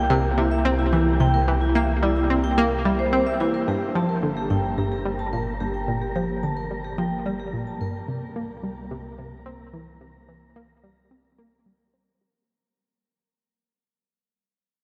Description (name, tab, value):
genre	ambient, sequencer-driven space music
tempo	109 BPM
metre	4/4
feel	straight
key	unclear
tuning	A4 = 441 Hz
part	vibraphone with medium hard mallets	arpeggios	0.0-7.9 s	E4 to A5	-29 LUFS	equal	analog delay, shimmer reverb
part	round analog bass	bass	0.0-12.5 s	G1 to C2	-30 LUFS	equal	tube saturation
part	wind-like tuned noise texture	texture	0.0-12.5 s	Bb3 to Bb4	-34 LUFS	equal	built-in reverb, shimmer reverb
part	analog pluck	riff	0.1-12.4 s	G2 to C4	-27 LUFS	equal	chorus, analog delay, shimmer reverb
room	wet cathedral reverb, RT60 6.8 s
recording	in a vast, echoing space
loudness	-23 LUFS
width	mono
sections	0.0-3.7 A section; 3.7-12.5 B section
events	fade-out on analog synth bass 3.7-12.5; fade-out 3.7-12.5; filter sweep on synth arpeggio sound 3.7-12.5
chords	0.0 C7; 3.7 Gm; 8.1 C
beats	0.38 0.93 | 1.48 2.03 2.58 3.13 | 3.68 4.23 4.78 5.33 | 5.88 6.43 6.98 7.53 | 8.08 8.63 9.18 9.73 | 10.28 10.84 11.38 11.94